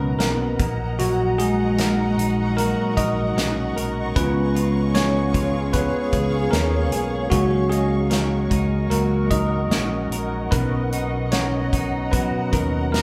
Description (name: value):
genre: pop ballad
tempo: 76 BPM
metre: 4/4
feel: straight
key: F# major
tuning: A4 = 440 Hz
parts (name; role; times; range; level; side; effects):
- bell-like tine electric piano; accompaniment; 0.0-13.0 s; F#3 to D#5; -25 LUFS; equal; none
- granular cloud pad; sustained chords; 0.0-13.0 s; G#4 to C#6; -32 LUFS; equal; built-in reverb
- twelve-string electric guitar; arpeggios; 0.0-13.0 s; A#2 to A#4; -30 LUFS; equal; none
- fingered electric bass; bass; 0.0-13.0 s; A#1 to D#2; -28 LUFS; equal; none
- natural country drum kit; drums; 0.2-13.0 s; hi-hat, kick drum, snare drum; -27 LUFS; equal; none
room: wet large studio reverb, RT60 1.5 s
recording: band playing live in one room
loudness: -21 LUFS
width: mono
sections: 0.0-13.0 A section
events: tine electric piano solo 0.0-13.0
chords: 0.0 Bmaj7; 0.6 F#6/A#; 4.2 C#; 7.3 F#6/C#; 10.5 Bmaj7